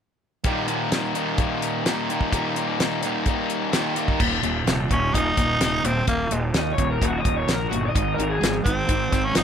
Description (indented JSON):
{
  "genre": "classic rock",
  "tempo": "128 BPM",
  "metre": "4/4",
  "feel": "straight",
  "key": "Eb major",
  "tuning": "A4 = 438 Hz",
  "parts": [
    { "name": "overdriven electric guitar", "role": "riff", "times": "0.4-9.4 s", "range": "Eb2 to Eb4", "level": "-28 LUFS", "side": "left 12 dB", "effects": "none" },
    { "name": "sludgy distorted guitar", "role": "riff", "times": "0.4-9.4 s", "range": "Eb2 to F3", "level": "-28 LUFS", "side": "right 12 dB", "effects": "overdrive" },
    { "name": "damped 70s drum kit", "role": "drums", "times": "0.4-9.4 s", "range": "crash cymbal, hi-hat, kick drum, snare drum", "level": "-24 LUFS", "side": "equal", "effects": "none" },
    { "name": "fuzz fingered electric bass", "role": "bass", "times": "4.2-9.4 s", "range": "Eb1 to Eb2", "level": "-27 LUFS", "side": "equal", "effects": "overdrive" },
    { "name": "breathy tenor saxophone", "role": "melody", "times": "4.9-9.4 s", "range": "Bb3 to Eb4", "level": "-24 LUFS", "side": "right 1 dB", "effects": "none" },
    { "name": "lead guitar through a small cranked amp", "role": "second line", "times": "6.6-8.5 s", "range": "Gb4 to Eb5", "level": "-27 LUFS", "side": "left 2 dB", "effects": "overdrive, digital delay" }
  ],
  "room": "light reverb",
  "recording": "none",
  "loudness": "-20 LUFS",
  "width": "side -8 dB against mid",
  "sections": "0.5-4.2 A section; 4.2-9.4 B section",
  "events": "none",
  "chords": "0.5 Eb; 4.2 Eb5; 8.0 Ab",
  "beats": "| 0.46 0.93 1.39 1.86 | 2.33 2.80 3.27 3.74 | 4.21 4.68 5.14 5.61 | 6.08 6.55 7.02 7.48 | 7.95 8.42 8.89 9.36"
}